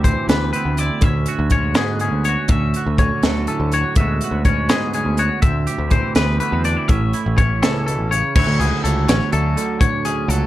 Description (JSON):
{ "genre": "math rock and midwest emo", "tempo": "82 BPM (dotted quarters)", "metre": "6/8", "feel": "straight", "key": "D lydian", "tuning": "A4 = 440 Hz", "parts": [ { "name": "twangy electric guitar", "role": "accompaniment", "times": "0.0-10.5 s", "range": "D2 to G4", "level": "-23 LUFS", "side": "right 4 dB", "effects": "analog chorus" }, { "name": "twangy electric guitar", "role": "arpeggios", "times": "0.0-10.5 s", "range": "G#4 to E5", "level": "-23 LUFS", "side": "left 5 dB", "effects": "none" }, { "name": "picked electric bass", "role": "bass", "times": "0.0-10.5 s", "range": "A1 to G#2", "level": "-20 LUFS", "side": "equal", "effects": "none" }, { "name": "crisp fusion drum kit", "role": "drums", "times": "0.0-10.4 s", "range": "crash cymbal, hi-hat, kick drum, snare drum", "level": "-19 LUFS", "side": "equal", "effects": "none" } ], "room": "light reverb", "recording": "dark, warm production", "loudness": "-16 LUFS", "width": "side -14 dB against mid", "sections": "0.0-8.3 A section; 8.3-10.5 B section", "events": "none", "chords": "0.0 Cmaj7/D; 1.0 E13/D; 2.5 Dmaj9; 4.0 E13/D; 5.4 Cmaj7/D; 6.9 A; 8.3 Dmaj9" }